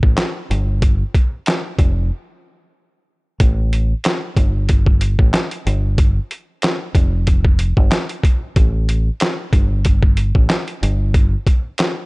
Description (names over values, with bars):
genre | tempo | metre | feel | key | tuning
hip hop, boom-bap hip-hop | 93 BPM | 4/4 | swing 55% on 16ths | unclear | A4 = 440 Hz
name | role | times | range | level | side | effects
deep dub fingered electric bass | bass | 0.0-11.3 s | F1 to A1 | -17 LUFS | equal | none
boom bap sampler-style drum kit | drums | 0.0-12.0 s | handclaps, hi-hat, kick drum, snare drum | -15 LUFS | equal | none
room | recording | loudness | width
little or no reverb | nothing above 11.0 kHz | -14 LUFS | side -26 dB against mid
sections
0.0-3.4 A section; 3.4-12.1 B section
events
break 2.1-3.4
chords
none